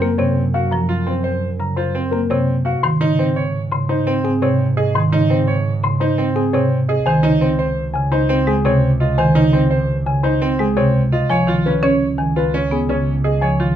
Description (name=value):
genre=classical, minimalist pattern music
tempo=170 BPM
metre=6/4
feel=straight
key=Db major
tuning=A4 = 439 Hz
part: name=dark baby grand piano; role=melody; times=0.0-13.6 s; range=Ab4 to C6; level=-22 LUFS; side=left 5 dB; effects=none
part: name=marimba with medium mallets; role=accompaniment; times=0.0-13.8 s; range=C3 to Db4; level=-18 LUFS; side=right 1 dB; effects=none
part: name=bright concert grand piano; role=arpeggios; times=0.0-13.8 s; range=C4 to Db5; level=-21 LUFS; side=right 2 dB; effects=none
part: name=warm double bass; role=bass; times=0.0-13.8 s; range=Db2 to Ab2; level=-23 LUFS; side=right 3 dB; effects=none
room=light reverb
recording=dark, warm production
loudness=-15 LUFS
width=side -10 dB against mid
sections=0.0-13.8 A section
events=none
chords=0.0 Gbmaj7; 2.8 Absus4; 7.1 Dbmaj7(no3); 11.3 Db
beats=0.01 0.36 | 0.72 1.07 1.42 1.77 2.13 2.48 | 2.83 3.19 3.54 3.89 4.25 4.60 | 4.95 5.30 5.66 6.01 6.36 6.72 | 7.07 7.42 7.78 8.13 8.48 8.83 | 9.19 9.54 9.89 10.25 10.60 10.95 | 11.30 11.66 12.01 12.36 12.72 13.07 | 13.42